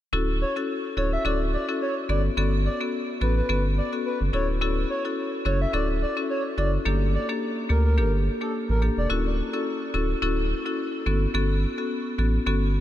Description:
afrobeats; 107 BPM; 4/4; swing 55% on 16ths; D major; A4 = 439 Hz
marimba with hard mallets; accompaniment; 0.1-12.8 s; Bb3 to A4; -27 LUFS; left 3 dB
saturated sub bass; bass; 0.1-12.8 s; D1 to D2; -24 LUFS; equal
breathy flute-like synth lead; melody; 0.4-9.1 s; A4 to E5; -31 LUFS; equal; chorus, diffuse ambient delay
light reverb, studio reverb; -23 LUFS; side -12 dB against mid
0.1-12.8 A section
0.1 Dmaj7; 2.1 Gmaj9#11; 4.3 Dmaj7; 6.9 Gmadd9; 9.1 Dmaj7; 11.1 Gmaj9#11

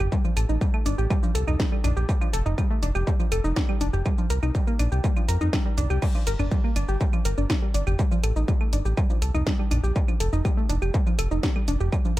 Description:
melodic techno; 122 BPM; 4/4; straight; A4 = 440 Hz
warbly dusty pluck; arpeggios; 0.0-12.2 s; F3 to Bb4; -29 LUFS; equal; chorus, sidechain pumping, analog delay
round analog bass; bass; 0.0-12.2 s; F1 to F2; -24 LUFS; equal; tube saturation, sidechain pumping
techno drum kit; drums; 0.0-12.2 s; claves, crash cymbal, hi-hat, shaker, snare drum, toms; -31 LUFS; right 1 dB; overdrive, sidechain pumping on toms, sidechain pumping on perc, sidechain pumping on hats, sidechain pumping on cymbals, analog delay
electronic kick drum; drums; 0.1-12.0 s; -24 LUFS; equal; distortion, overdrive
little or no reverb; echo-heavy mix; -21 LUFS; side -16 dB against mid
0.0-12.2 A section
0.1 Am; 2.1 Fsus2; 4.1 Csus4; 6.0 N.C.; 8.0 Am; 10.0 Fsus2

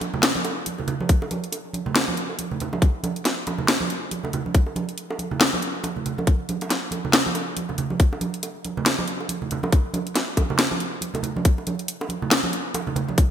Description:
dubstep; 139 BPM; 4/4; swing 58% on 16ths, half-time
garage drum kit; drums; 0.0-13.3 s; hi-hat, snare drum; -22 LUFS; left 1 dB; gated reverb
congas and bongos; percussion; 0.0-13.2 s; -27 LUFS; right 4 dB; dub echo
electronic kick drum; drums; 1.1-13.3 s; -17 LUFS; left 1 dB
light reverb, digital ambience; bright 1980s-style digital production; -21 LUFS; side -9 dB against mid
0.0-13.3 A section

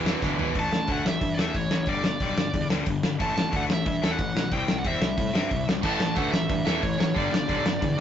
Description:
punk rock; 182 BPM; 4/4; straight; A4 = 438 Hz
distorted electric guitar; riff; 0.0-8.0 s; E2 to C4; -29 LUFS; left 6 dB; overdrive
distorted electric guitar; riff; 0.0-0.5, 5.8-8.0 s; E2 to A3; -30 LUFS; right 7 dB; distortion
fuzz picked electric bass; bass; 0.0-8.0 s; G1 to A2; -31 LUFS; right 1 dB; overdrive
loose indie drum kit; drums; 0.1-7.9 s; crash cymbal, hi-hat, kick drum, snare drum, toms; -27 LUFS; equal
high-gain lead guitar; melody; 0.6-8.0 s; C#5 to A5; -30 LUFS; right 2 dB; distortion
light reverb; rough rehearsal-room recording, tube saturation, nothing above 7.7 kHz; -23 LUFS; side -9 dB against mid
0.6-8.0 A section
drum fill 0.2-0.6
0.0 E; 0.6 A5; 1.9 G5; 3.2 A5; 4.5 C; 5.8 A5; 7.2 G

